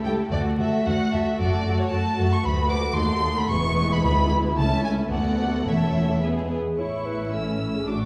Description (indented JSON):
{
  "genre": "quick classical-period movement for symphony orchestra",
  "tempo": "112 BPM",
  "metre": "2/4",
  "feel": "rubato",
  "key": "A major",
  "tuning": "A4 = 440 Hz",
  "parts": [
    { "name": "rich chamber violin section", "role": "melody", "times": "0.0-8.1 s", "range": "C#5 to E6", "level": "-30 LUFS", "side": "equal", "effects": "none" },
    { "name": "dark chamber violin section", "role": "second line", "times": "0.0-7.9 s", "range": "D4 to E5", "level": "-34 LUFS", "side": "equal", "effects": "none" },
    { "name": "warm chamber viola section", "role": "accompaniment", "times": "0.0-8.1 s", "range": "G#3 to F#4", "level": "-30 LUFS", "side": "equal", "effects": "none" },
    { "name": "mellow French horn section", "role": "sustained chords", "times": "0.1-6.5 s", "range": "G#3 to G4", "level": "-35 LUFS", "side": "equal", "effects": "none" },
    { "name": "warm chamber cello section", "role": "bass", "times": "0.1-8.1 s", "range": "C#2 to A2", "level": "-29 LUFS", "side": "equal", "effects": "none" },
    { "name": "dark chamber double bass section", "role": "bass", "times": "0.3-8.1 s", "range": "E1 to D#2", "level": "-32 LUFS", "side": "equal", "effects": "none" },
    { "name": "dark clarinet", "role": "second line", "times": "6.5-8.1 s", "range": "F#4 to C#5", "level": "-32 LUFS", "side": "equal", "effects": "none" }
  ],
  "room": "wet recital hall reverb, RT60 1.7 s",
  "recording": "heard from further back in the room, vinyl crackle",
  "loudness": "-23 LUFS",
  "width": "mono",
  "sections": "0.0-6.8 A section; 6.8-8.1 B section",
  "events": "none",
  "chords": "0.3 D; 1.4 F#m; 2.4 Bm7/D; 3.0 D#dim7; 3.5 E; 4.0 E7/D; 4.6 A/C#; 5.1 Bm7/D; 5.7 A/E; 6.2 E; 6.8 A"
}